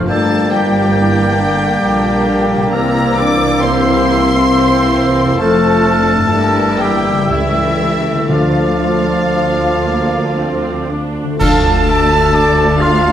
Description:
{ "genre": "classical, slow romantic movement for symphony orchestra", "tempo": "56-70 BPM", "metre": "3/4", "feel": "rubato", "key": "D minor", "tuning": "A4 = 444 Hz", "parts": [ { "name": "rich studio violin section", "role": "second line", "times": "0.0-13.1 s", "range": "C4 to F6", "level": "-25 LUFS", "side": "left 1 dB", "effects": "none" }, { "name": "small flute group", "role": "second line", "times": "0.0-13.1 s", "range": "F5 to G6", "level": "-23 LUFS", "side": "right 1 dB", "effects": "none" }, { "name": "warm clarinet", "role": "second line", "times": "0.0-13.1 s", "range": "F4 to D5", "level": "-21 LUFS", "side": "equal", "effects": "none" }, { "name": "mellow bassoon", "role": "accompaniment", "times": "0.0-11.0 s", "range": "F3 to Bb3", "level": "-21 LUFS", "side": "right 2 dB", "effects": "none" }, { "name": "warm studio viola section", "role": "accompaniment", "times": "0.0-13.1 s", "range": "D3 to D4", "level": "-21 LUFS", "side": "right 1 dB", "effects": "none" }, { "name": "concert harp", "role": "arpeggios", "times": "0.0-13.1 s", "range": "F2 to A4", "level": "-22 LUFS", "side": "left 6 dB", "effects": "none" }, { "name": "warm studio cello section", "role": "bass", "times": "0.0-13.1 s", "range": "C#2 to C3", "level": "-21 LUFS", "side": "right 2 dB", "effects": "none" }, { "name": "warm studio double bass section", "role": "bass", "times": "0.0-13.1 s", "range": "F1 to D2", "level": "-22 LUFS", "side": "right 3 dB", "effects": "none" }, { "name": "rich studio violin section", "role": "melody", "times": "0.1-13.1 s", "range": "E5 to D6", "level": "-20 LUFS", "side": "left 2 dB", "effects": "none" }, { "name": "warm oboe", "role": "second line", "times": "0.1-13.1 s", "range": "E4 to F5", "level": "-22 LUFS", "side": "right 2 dB", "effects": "none" }, { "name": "mellow French horn section", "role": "sustained chords", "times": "0.1-11.8 s", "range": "E3 to D4", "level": "-19 LUFS", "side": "left 3 dB", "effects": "none" }, { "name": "timpani", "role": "percussion", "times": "8.3-9.8 s", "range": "D3", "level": "-20 LUFS", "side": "equal", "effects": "none" }, { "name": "clear trumpet", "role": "stabs", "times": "11.4-11.8 s", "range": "A4", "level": "-21 LUFS", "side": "right 5 dB", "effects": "none" }, { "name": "clash cymbals and concert bass drum", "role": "percussion", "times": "11.4-13.1 s", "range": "none", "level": "-20 LUFS", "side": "right 1 dB", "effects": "none" } ], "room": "wet recital hall reverb, RT60 1.6 s", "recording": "none", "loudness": "-11 LUFS", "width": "side -10 dB against mid", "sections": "0.0-11.4 A section; 11.4-13.1 B section", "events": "band accent 11.4-12.3", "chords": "0.1 Gm; 2.7 C7; 5.4 F; 6.3 Edim/G; 7.3 A7/C#; 8.3 Dm" }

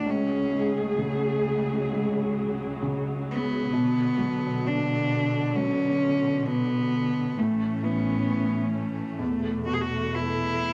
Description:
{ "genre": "pop", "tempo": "66 BPM", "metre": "4/4", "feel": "straight", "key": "unclear", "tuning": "A4 = 441 Hz", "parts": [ { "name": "warm cello", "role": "melody", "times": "0.0-10.7 s", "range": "A3 to G#4", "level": "-30 LUFS", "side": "equal", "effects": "none" }, { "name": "felt-muted upright piano", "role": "accompaniment", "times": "0.0-10.7 s", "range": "C#2 to F#3", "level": "-32 LUFS", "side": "equal", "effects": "none" }, { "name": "dark studio string section", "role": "sustained chords", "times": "0.0-10.7 s", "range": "C#2 to G#4", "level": "-31 LUFS", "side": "equal", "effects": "none" } ], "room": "moderate studio reverb, RT60 0.6 s", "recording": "none", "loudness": "-26 LUFS", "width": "mono", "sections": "0.0-10.7 A section", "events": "none", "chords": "0.1 F#madd9/C#; 3.7 Bm; 7.4 A; 9.2 Esus4" }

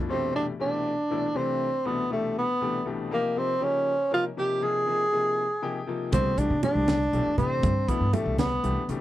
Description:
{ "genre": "electric jazz fusion", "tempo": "80 BPM (dotted quarters)", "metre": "6/8", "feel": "straight", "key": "unclear", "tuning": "A4 = 442 Hz", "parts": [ { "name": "bright grand piano", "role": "accompaniment", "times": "0.0-9.0 s", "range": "C2 to G5", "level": "-32 LUFS", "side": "left 5 dB", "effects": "none" }, { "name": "breathy tenor saxophone", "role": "melody", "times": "0.1-8.9 s", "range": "A3 to Ab4", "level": "-26 LUFS", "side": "equal", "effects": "none" }, { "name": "upright bass", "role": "bass", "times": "6.1-9.0 s", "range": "B1 to C3", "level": "-28 LUFS", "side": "equal", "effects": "none" }, { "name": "crisp fusion drum kit", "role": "drums", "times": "6.1-9.0 s", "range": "hi-hat, kick drum, snare drum", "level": "-29 LUFS", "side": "equal", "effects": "none" }, { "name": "congas", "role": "percussion", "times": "6.1-8.9 s", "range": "none", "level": "-30 LUFS", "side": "right 3 dB", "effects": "none" } ], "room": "little or no reverb", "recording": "none", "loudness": "-24 LUFS", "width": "side -14 dB against mid", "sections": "0.1-9.0 A section", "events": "grand piano fill 5.4-6.1", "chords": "0.1 Cmaj9; 3.1 Eb13; 4.6 Abmaj9; 6.1 Cmaj9" }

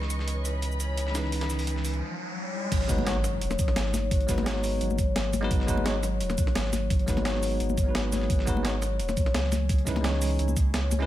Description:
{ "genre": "liquid drum and bass", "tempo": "172 BPM", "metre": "4/4", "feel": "straight", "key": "G# minor", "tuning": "A4 = 436 Hz", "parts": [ { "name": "bell-like tine electric piano", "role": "accompaniment", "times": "0.0-11.1 s", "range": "E3 to D#5", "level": "-32 LUFS", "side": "equal", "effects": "fast stereo tremolo, ping-pong delay" }, { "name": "dark studio string section", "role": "sustained chords", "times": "0.0-2.0 s", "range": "B4 to C#6", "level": "-37 LUFS", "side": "left 1 dB", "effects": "sidechain pumping" }, { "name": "concert harp", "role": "arpeggios", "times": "0.0-11.1 s", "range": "F#3 to G#4", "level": "-33 LUFS", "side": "left 6 dB", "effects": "ping-pong delay" }, { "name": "warm sub bass", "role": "bass", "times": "0.0-11.1 s", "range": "D#1 to C#2", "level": "-29 LUFS", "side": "right 1 dB", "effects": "none" }, { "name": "dusty soul sampler-style drum kit", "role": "drums", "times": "0.0-11.1 s", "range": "hi-hat, snare drum", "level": "-39 LUFS", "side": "equal", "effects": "high-pass filter on hats, studio ambience, high-pass filter on snare" }, { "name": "riser and impact", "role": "sound effects", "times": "0.7-4.1 s", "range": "none", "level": "-36 LUFS", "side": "right 1 dB", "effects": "none" }, { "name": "breakbeat sampler-style drum kit", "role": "drums", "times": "0.1-11.0 s", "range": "crash cymbal, hi-hat, shaker, snare drum", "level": "-34 LUFS", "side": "right 1 dB", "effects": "studio ambience" }, { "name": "electronic kick drum", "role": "drums", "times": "2.7-10.6 s", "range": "none", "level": "-26 LUFS", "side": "right 1 dB", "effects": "studio ambience" }, { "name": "congas", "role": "percussion", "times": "3.0-11.0 s", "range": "none", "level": "-35 LUFS", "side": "left 6 dB", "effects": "none" } ], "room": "light reverb", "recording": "none", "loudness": "-24 LUFS", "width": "side -13 dB against mid", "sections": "0.0-2.7 A section; 2.7-11.1 B section", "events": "riser 0.7-2.7; break 2.0-2.7; drop 2.7-11.1; impact 2.7-4.1", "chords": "0.0 C#m9; 2.7 G#m7; 9.5 C#m9" }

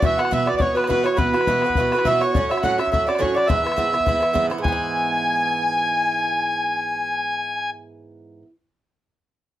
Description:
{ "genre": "celtic folk, Celtic reel", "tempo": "208 BPM", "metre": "4/4", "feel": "swing 55% on 8ths", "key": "E mixolydian", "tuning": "A4 = 438 Hz", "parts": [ { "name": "accordion", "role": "melody", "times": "0.0-7.7 s", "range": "B4 to G#5", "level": "-21 LUFS", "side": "equal", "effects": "none" }, { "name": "breathy bright bansuri", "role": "second line", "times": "0.0-7.7 s", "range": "B4 to G#5", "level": "-27 LUFS", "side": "right 2 dB", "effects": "none" }, { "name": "rich fiddle", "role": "second line", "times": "0.0-7.7 s", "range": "B4 to G#5", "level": "-30 LUFS", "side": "left 4 dB", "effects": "none" }, { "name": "Irish bouzouki", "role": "accompaniment", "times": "0.0-8.5 s", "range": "G#2 to F#4", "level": "-25 LUFS", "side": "right 4 dB", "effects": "none" }, { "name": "bodhran", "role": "percussion", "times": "0.0-4.8 s", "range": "none", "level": "-25 LUFS", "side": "left 3 dB", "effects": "none" } ], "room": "light reverb", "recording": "none", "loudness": "-18 LUFS", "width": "side -13 dB against mid", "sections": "0.0-4.6 A section; 4.6-7.0 B section", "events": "none", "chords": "0.0 Esus2; 2.3 F#m; 3.5 E" }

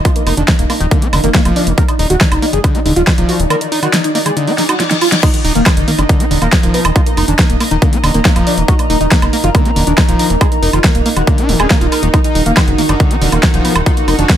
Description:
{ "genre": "psychedelic trance", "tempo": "139 BPM", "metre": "4/4", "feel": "straight", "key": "Eb harmonic minor", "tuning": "A4 = 437 Hz", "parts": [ { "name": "pulsing gated texture", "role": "sustained chords", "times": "0.0-14.4 s", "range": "Eb4 to Eb5", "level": "-22 LUFS", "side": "right 1 dB", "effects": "chorus, built-in reverb, sidechain pumping" }, { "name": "wide unison lead", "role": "melody", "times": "0.1-14.4 s", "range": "Eb3 to Bb4", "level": "-18 LUFS", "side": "equal", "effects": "phaser, sidechain pumping, tape echo" }, { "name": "screaming distorted acid line", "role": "riff", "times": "0.1-14.2 s", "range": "D3 to F4", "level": "-19 LUFS", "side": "equal", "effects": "distortion, chorus, auto-pan, sidechain pumping, digital delay" }, { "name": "big-room dance drum kit", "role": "drums", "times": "0.1-14.4 s", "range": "crash cymbal, hi-hat, snare drum, woodblock", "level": "-17 LUFS", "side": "equal", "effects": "overdrive" }, { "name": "electronic kick drum", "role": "drums", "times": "0.1-14.4 s", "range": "none", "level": "-12 LUFS", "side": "equal", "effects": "overdrive" }, { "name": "round analog bass", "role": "bass", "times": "0.3-14.3 s", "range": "Eb1 to Gb1", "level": "-16 LUFS", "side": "equal", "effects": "none" }, { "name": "reverse cymbal", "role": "sound effects", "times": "4.5-5.2 s", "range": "none", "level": "-21 LUFS", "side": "left 6 dB", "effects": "none" }, { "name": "warbly tape-like pad", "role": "texture", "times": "6.0-14.4 s", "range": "Eb4 to Bb5", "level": "-23 LUFS", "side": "right 1 dB", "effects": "chorus, built-in reverb, sidechain pumping" } ], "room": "light reverb", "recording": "none", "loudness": "-10 LUFS", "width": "side -10 dB against mid", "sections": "0.0-5.2 A section; 5.2-14.4 B section", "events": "kick drops out 3.5-5.2; reverse cymbal 4.5-5.2; drum fill 4.6-5.2; drop 5.2-14.4", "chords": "0.0 Eb5" }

